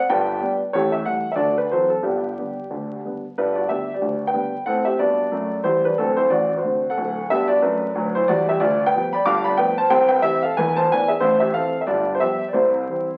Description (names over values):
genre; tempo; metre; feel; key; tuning
jazz, stride piano; 183 BPM; 4/4; swing 58% on 8ths; G major, C major from 8.6 s; A4 = 438 Hz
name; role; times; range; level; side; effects
clear upright piano; solo; 0.0-13.2 s; D1 to D6; -21 LUFS; equal; none
room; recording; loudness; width
wet large studio reverb, RT60 1.0 s; very old 78 rpm record, vinyl crackle; -21 LUFS; mono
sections
0.0-3.4 A section; 3.4-13.2 A section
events
none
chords
0.1 G; 0.7 A5; 1.4 D9; 2.1 G; 4.7 D7; 8.6 G7/D; 9.3 G9; 9.9 C; 10.6 E7; 11.2 Am; 11.9 G7; 12.6 C